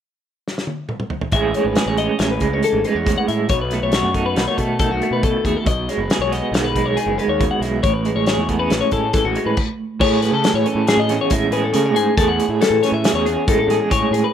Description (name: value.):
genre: math rock and midwest emo.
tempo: 138 BPM.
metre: 5/4.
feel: straight.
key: A lydian.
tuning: A4 = 440 Hz.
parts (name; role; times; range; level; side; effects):
loose indie drum kit; drums; 0.5-14.2 s; crash cymbal, hi-hat, kick drum, snare drum, toms; -22 LUFS; left 1 dB; none.
electric guitar through a small old amp; accompaniment; 1.3-14.3 s; E2 to G#4; -20 LUFS; right 6 dB; tremolo.
twelve-string electric guitar; arpeggios; 1.3-14.3 s; F#4 to F#5; -21 LUFS; left 8 dB; lush chorus.
fuzz picked electric bass; bass; 1.3-14.2 s; F#1 to C#3; -24 LUFS; equal; overdrive.
room: light reverb.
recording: rough home demo mix.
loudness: -16 LUFS.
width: side -9 dB against mid.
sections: 0.0-1.3 A section; 1.3-10.0 B section; 10.0-14.3 C section.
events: drum fill 0.5-1.3; stop 9.6-10.0.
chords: 0.0 N.C.; 1.3 Amaj7; 3.5 B7; 5.7 G#m7; 7.8 Amaj7.